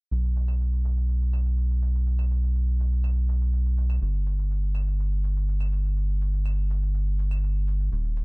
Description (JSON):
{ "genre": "melodic techno", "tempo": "123 BPM", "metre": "4/4", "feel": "straight", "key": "unclear", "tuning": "A4 = 440 Hz", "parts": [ { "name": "round analog bass", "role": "bass", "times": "0.1-8.2 s", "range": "D#1 to B1", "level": "-23 LUFS", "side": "equal", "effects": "none" }, { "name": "shaker and claves", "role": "drums", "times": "0.1-8.2 s", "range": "none", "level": "-51 LUFS", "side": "right 1 dB", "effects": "low-pass filter on perc, low-pass filter on room" } ], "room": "little or no reverb", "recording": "dark, warm production", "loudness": "-23 LUFS", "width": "side -35 dB against mid", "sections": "0.1-8.2 A section", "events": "none", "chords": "none" }